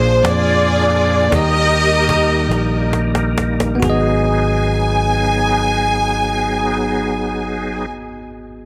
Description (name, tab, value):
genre	slow gospel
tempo	42-58 BPM (dotted quarters)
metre	6/8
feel	straight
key	G# minor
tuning	A4 = 439 Hz
part	clear studio string section	melody	0.0-7.9 s	E#4 to G#5	-20 LUFS	equal	tape echo
part	bell-like tine electric piano	accompaniment	0.0-8.7 s	G#1 to D#5	-24 LUFS	equal	none
part	bright tonewheel organ	sustained chords	0.0-7.9 s	E#3 to A#4	-25 LUFS	equal	fast rotary speaker, chorus vibrato
part	fingered electric bass	bass	0.0-7.9 s	G#1 to E#2	-22 LUFS	equal	none
part	cajon	drums	0.2-4.0 s	none	-24 LUFS	equal	none
room	light reverb, small room reverb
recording	none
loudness	-16 LUFS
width	mono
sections	0.0-3.8 A section; 3.8-8.7 B section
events	slowing down 0.0-3.8; drum fill 2.5-3.8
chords	0.0 A#7; 1.3 D#; 3.8 G#m7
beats	0.24 | 1.32 2.50 | 3.83 5.26 | 6.68 8.10